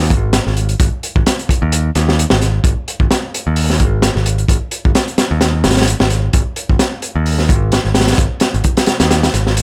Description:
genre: breakbeat, breaks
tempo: 130 BPM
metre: 4/4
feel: swing 55% on 16ths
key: unclear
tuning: A4 = 440 Hz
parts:
  - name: modern bright picked electric bass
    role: bass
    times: 0.0-9.6 s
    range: G#1 to D#2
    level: -18 LUFS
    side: equal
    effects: none
  - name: crunchy breakbeat drum kit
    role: drums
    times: 0.1-9.6 s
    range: hi-hat, kick drum, snare drum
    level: -16 LUFS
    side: equal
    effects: none
room: little or no reverb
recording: none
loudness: -15 LUFS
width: mono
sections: 0.0-9.6 A section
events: none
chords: none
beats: 0.34 | 0.80 1.26 1.72 2.18 | 2.65 3.11 3.57 4.03 | 4.49 4.95 5.42 5.88 | 6.34 6.80 7.26 7.72 | 8.18 8.65 9.11 9.57

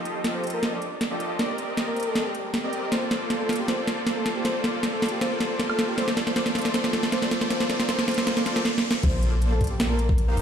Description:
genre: future bass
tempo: 157 BPM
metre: 4/4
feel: half-time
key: Bb major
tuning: A4 = 439 Hz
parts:
  - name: supersaw chords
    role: riff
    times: 0.0-10.4 s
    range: Eb3 to F5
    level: -28 LUFS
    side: equal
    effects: wide subtle chorus, sidechain pumping, low-pass filter
  - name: riser and impact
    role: sound effects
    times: 0.9-10.4 s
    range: none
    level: -37 LUFS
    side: equal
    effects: none
  - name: trap drum kit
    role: drums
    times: 0.1-10.4 s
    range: crash cymbal, hi-hat, snare drum, woodblock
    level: -26 LUFS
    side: right 1 dB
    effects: overdrive
  - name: soft octave-layered synth lead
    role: melody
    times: 0.3-10.4 s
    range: G4 to D5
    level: -31 LUFS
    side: left 1 dB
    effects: chorus, sidechain pumping, tape echo
  - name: warm 808-style bass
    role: bass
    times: 9.0-10.4 s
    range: Eb1 to Bb1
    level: -24 LUFS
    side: equal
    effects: sidechain pumping
  - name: electronic kick drum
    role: drums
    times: 9.0-10.2 s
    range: none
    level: -23 LUFS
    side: equal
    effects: overdrive
room: moderate huge ambient reverb, RT60 4.4 s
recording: played on a big sound system in a bare room, stone room reverb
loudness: -22 LUFS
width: side -8 dB against mid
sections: 0.0-9.0 A section; 9.0-10.4 B section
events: build-up 0.0-9.0; drum fill 0.0-8.7, 8.7-9.0; riser 0.9-9.0; drop 9.0-10.4; impact 9.0-10.4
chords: 0.0 F7; 1.4 Cm7; 2.9 Bbmaj9; 6.0 F; 7.5 Bbmaj9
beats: 0.25 0.63 1.01 | 1.39 1.77 2.16 2.54 | 2.92 3.30 3.69 4.07 | 4.45 4.83 5.21 5.60 | 5.98 6.36 6.74 7.12 | 7.51 7.89 8.27 8.65 | 9.04 9.42 9.80 10.18

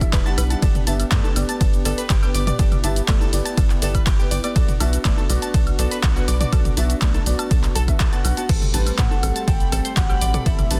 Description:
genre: progressive house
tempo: 122 BPM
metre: 4/4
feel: straight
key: unclear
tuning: A4 = 441 Hz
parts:
  - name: warm analog pad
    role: sustained chords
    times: 0.0-10.8 s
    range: E3 to G4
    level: -34 LUFS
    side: equal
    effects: chorus, sidechain pumping
  - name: warm concert grand piano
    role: stabs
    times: 0.0-10.8 s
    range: G3 to F#5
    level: -31 LUFS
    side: equal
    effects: sidechain pumping, tape echo
  - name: tight sequencer bass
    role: bass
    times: 0.0-10.8 s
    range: E1 to A2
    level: -25 LUFS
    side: equal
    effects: sidechain pumping
  - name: deep house drum kit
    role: drums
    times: 0.0-10.8 s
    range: crash cymbal, handclaps, hi-hat, ride cymbal, shaker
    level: -30 LUFS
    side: equal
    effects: overdrive
  - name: electronic kick drum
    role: drums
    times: 0.0-10.6 s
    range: none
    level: -22 LUFS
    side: equal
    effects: overdrive
  - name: electronic woodblock, toms and congas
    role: percussion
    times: 0.0-10.8 s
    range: none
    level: -33 LUFS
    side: equal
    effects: sidechain pumping on toms, sidechain pumping on perc
  - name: glassy wavetable pluck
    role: arpeggios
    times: 0.1-10.7 s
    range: A3 to A6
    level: -33 LUFS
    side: equal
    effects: chorus, cassette tape, sidechain pumping, tape echo
  - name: backwards swelling texture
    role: texture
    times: 8.5-10.8 s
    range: B5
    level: -41 LUFS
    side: equal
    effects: built-in reverb, sidechain pumping
  - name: soft octave-layered synth lead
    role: melody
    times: 9.0-10.8 s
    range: E5 to G5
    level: -31 LUFS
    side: equal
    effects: chorus, tremolo
  - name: soft synth bell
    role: second line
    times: 9.0-10.8 s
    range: E5 to G5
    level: -38 LUFS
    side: equal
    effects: none
room: digital ambience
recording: dense, heavily limited modern master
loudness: -19 LUFS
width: mono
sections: 0.0-10.8 A section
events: none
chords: 0.0 Em7; 0.6 G; 4.6 Bm; 8.5 Am7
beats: 0.13 | 0.62 1.12 1.61 2.10 | 2.59 3.08 3.58 4.07 | 4.56 5.05 5.54 6.03 | 6.53 7.02 7.51 8.00 | 8.49 8.98 9.48 9.97 | 10.46

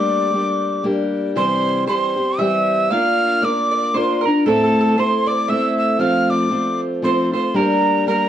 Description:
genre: celtic folk, Celtic waltz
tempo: 116 BPM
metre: 3/4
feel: swing 56% on 8ths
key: unclear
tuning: A4 = 440 Hz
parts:
  - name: breathy mellow mid whistle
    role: melody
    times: 0.0-8.3 s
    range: A5 to F6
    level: -20 LUFS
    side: right 1 dB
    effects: plate reverb
  - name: picked steel-string acoustic guitar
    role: accompaniment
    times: 0.0-8.3 s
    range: A2 to Bb4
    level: -18 LUFS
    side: left 1 dB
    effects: none
  - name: mandolin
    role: second line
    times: 1.4-8.3 s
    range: A4 to F5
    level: -22 LUFS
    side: right 4 dB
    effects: none
room: moderate studio reverb, RT60 0.5 s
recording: worn, warbling old tape, cassette tape, warbly pitch drift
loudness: -15 LUFS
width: side -10 dB against mid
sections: 0.0-1.4 A section; 1.4-8.3 A section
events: none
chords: 0.0 Gm; 1.4 C; 2.9 Bb; 4.5 Am; 6.0 F; 7.6 Gm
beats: 0.32 0.84 | 1.35 1.87 2.39 | 2.90 3.42 3.94 | 4.45 4.97 5.49 | 6.00 6.52 7.04 | 7.56 8.08

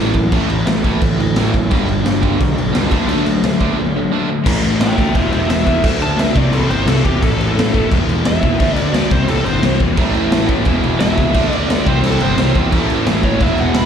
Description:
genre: punk rock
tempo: 174 BPM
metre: 4/4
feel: straight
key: unclear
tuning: A4 = 440 Hz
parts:
  - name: crunchy overdriven guitar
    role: riff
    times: 0.0-13.9 s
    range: E2 to D4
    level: -22 LUFS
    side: right 1 dB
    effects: none
  - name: distorted electric guitar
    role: riff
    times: 0.0-4.4, 10.0-13.9 s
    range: E2 to D4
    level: -22 LUFS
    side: right 11 dB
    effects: overdrive
  - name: sludgy distorted guitar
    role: riff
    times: 0.0-13.9 s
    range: G2 to F#4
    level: -21 LUFS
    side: left 10 dB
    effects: overdrive, slapback echo
  - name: fuzz picked electric bass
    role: bass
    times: 0.0-13.9 s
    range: E1 to A2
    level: -20 LUFS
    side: equal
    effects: overdrive
  - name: raw garage drum kit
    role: drums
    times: 0.1-13.8 s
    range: crash cymbal, kick drum, snare drum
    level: -17 LUFS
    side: equal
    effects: none
  - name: bluesy overdriven lead guitar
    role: melody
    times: 4.8-13.9 s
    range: G4 to B5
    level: -22 LUFS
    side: right 2 dB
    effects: distortion, slapback echo, digital delay
room: light reverb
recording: live gig heard through the venue's PA, club reverb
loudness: -13 LUFS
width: side -8 dB against mid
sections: 0.0-4.5 A section; 4.5-13.9 B section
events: break 3.8-4.5; lead electric guitar solo 4.5-13.9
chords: 0.0 A5; 1.7 G; 2.9 D; 4.5 A; 5.1 E; 5.8 D; 6.4 C; 7.2 A; 7.9 E; 8.6 D; 9.1 C; 10.0 A; 10.7 E; 11.3 D; 11.9 C; 12.7 A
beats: | 0.32 0.66 1.01 1.35 | 1.70 2.04 2.39 2.73 | 3.08 3.42 3.77 4.11 | 4.46 4.80 5.15 5.49 | 5.83 6.18 6.52 6.87 | 7.21 7.56 7.90 8.24 | 8.59 8.93 9.28 9.62 | 9.97 10.31 10.65 11.00 | 11.34 11.69 12.03 12.38 | 12.72 13.06 13.41 13.75

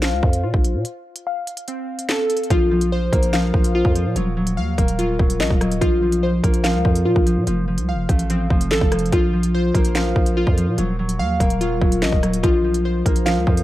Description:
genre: hip hop, drill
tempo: 145 BPM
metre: 4/4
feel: half-time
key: unclear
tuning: A4 = 440 Hz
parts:
  - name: glassy digital keys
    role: arpeggios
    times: 0.0-13.6 s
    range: C4 to F5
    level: -22 LUFS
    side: left 2 dB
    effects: chorus, low-pass filter, digital delay
  - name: growling 808-style bass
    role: bass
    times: 0.0-13.6 s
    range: Eb1 to Bb2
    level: -22 LUFS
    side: equal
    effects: none
  - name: drill drum kit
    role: drums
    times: 0.0-13.6 s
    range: handclaps, hi-hat, kick drum, rim click, snare drum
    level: -20 LUFS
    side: equal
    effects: none
  - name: concert harp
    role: accompaniment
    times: 2.5-13.6 s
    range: F3 to Bb3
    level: -23 LUFS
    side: equal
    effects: low-pass filter
room: little or no reverb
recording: dark, warm production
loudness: -16 LUFS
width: side -15 dB against mid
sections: 0.0-13.6 A section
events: filter sweep 0.0-2.5; break 0.8-2.5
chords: 0.0 Bbsus2; 0.8 F; 2.5 Bbsus2; 4.2 Ebmadd9; 5.8 Bbsus2; 7.5 F; 9.1 Bbsus2; 10.8 Ebmadd9; 12.4 Bbsus2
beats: 0.02 0.44 | 0.85 1.26 1.68 2.09 | 2.50 2.92 3.33 3.75 | 4.16 4.57 4.99 5.40 | 5.82 6.23 6.64 7.06 | 7.47 7.88 8.30 8.71 | 9.12 9.54 9.95 10.37 | 10.78 11.19 11.61 12.02 | 12.44 12.85 13.26

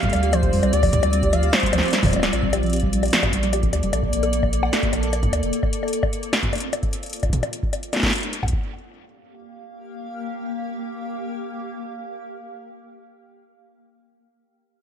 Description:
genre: IDM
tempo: 150 BPM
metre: 4/4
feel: straight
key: G minor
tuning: A4 = 440 Hz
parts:
  - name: warm velvety synth lead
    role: melody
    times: 0.0-2.1 s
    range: C5 to F5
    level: -27 LUFS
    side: equal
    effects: chorus, ping-pong delay
  - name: granular cloud pad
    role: sustained chords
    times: 0.0-12.7 s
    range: Bb3 to F5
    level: -28 LUFS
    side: equal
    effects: built-in reverb, lush chorus, sidechain pumping
  - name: soft round pluck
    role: arpeggios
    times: 0.0-3.9 s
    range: F3 to G4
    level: -25 LUFS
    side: right 2 dB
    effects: analog chorus, ping-pong delay
  - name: electro analog drum machine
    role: drums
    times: 0.0-8.5 s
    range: bongos, hi-hat, snare drum, toms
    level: -23 LUFS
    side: left 2 dB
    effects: gated reverb, ping-pong delay
  - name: electronic kick drum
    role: drums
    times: 0.0-8.6 s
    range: none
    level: -25 LUFS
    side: equal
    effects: none
  - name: warm sub bass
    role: bass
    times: 0.1-5.5 s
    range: D1 to F2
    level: -23 LUFS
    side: equal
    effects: none
room: light reverb, digital ambience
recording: bright 1980s-style digital production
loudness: -19 LUFS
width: side -9 dB against mid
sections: 0.0-2.3 A section; 2.3-8.7 B section; 8.7-11.9 C section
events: drum fill 1.7-2.3; filter sweep on synth arpeggio sound 2.3-3.9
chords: 0.0 Dm7; 2.3 Bbmaj7; 5.5 Dm7; 8.5 Gm7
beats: 0.33 | 0.73 1.13 1.53 1.93 | 2.33 2.73 3.13 3.53 | 3.93 4.33 4.73 5.13 | 5.53 5.93 6.33 6.73 | 7.13 7.53 7.93 8.33 | 8.73 9.13 9.53 9.93 | 10.33 10.73 11.13 11.53

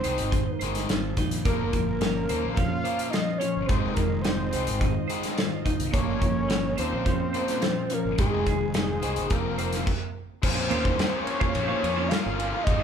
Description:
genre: indie rock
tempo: 107 BPM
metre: 4/4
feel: straight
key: Bb dorian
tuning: A4 = 439 Hz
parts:
  - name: fat analog lead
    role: melody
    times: 0.0-12.8 s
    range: Ab4 to F5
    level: -30 LUFS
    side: left 1 dB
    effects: none
  - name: biting overdriven guitar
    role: riff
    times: 0.0-12.8 s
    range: Ab2 to Eb4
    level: -31 LUFS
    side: left 8 dB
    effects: none
  - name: twelve-string electric guitar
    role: riff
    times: 0.0-12.8 s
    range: F3 to C5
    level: -32 LUFS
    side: right 9 dB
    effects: none
  - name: fuzz fingered electric bass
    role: bass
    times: 0.0-12.8 s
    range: F1 to F2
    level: -32 LUFS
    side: equal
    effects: overdrive
  - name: loose indie drum kit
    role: drums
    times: 0.0-12.8 s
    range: crash cymbal, hi-hat, kick drum, ride cymbal, snare drum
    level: -28 LUFS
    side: equal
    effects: none
  - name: combo organ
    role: sustained chords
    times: 1.5-12.8 s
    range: F3 to C6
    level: -42 LUFS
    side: right 2 dB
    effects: none
room: moderate large studio reverb, RT60 1.2 s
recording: band playing live in one room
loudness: -23 LUFS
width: side -7 dB against mid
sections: 0.0-10.4 A section; 10.4-12.8 B section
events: stop 9.9-10.4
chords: 0.0 Ab6; 1.4 Bbmadd9; 3.7 Ab6; 5.9 Bbmadd9; 8.2 Ab6; 9.3 Fsus4; 10.4 Bbmadd9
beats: 0.32 0.88 | 1.45 2.01 2.57 3.13 | 3.70 4.26 4.82 5.38 | 5.94 6.51 7.07 7.63 | 8.19 8.75 9.31 9.87 | 10.44 10.99 11.55 12.12 | 12.68

